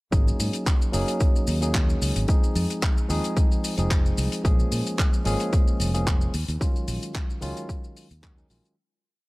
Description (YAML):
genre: nu-disco, nu disco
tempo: 111 BPM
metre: 4/4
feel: swing 54% on 16ths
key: Eb dorian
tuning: A4 = 439 Hz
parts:
  - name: bright tine electric piano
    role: accompaniment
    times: 0.1-8.7 s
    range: Eb3 to Ab4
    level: -29 LUFS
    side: equal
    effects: analog delay
  - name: fingered electric bass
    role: bass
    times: 0.1-8.6 s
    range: F1 to Bb2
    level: -26 LUFS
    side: equal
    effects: none
  - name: damped 70s drum kit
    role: drums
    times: 0.1-8.8 s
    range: handclaps, hi-hat, shaker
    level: -32 LUFS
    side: left 1 dB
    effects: none
  - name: electronic kick drum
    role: drums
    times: 0.1-8.3 s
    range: none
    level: -22 LUFS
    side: equal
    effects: overdrive
room: small room ambience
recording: none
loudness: -21 LUFS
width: side -22 dB against mid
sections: 0.1-8.8 drop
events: drop 0.1-8.8; fade-out 5.9-8.8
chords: 0.1 Ab9sus4; 2.3 Fm7; 4.4 Bbm7; 6.3 Ebm11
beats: | 0.12 0.66 1.21 1.75 | 2.29 2.83 3.37 3.91 | 4.45 4.99 5.53 6.07 | 6.61 7.15 7.69 8.23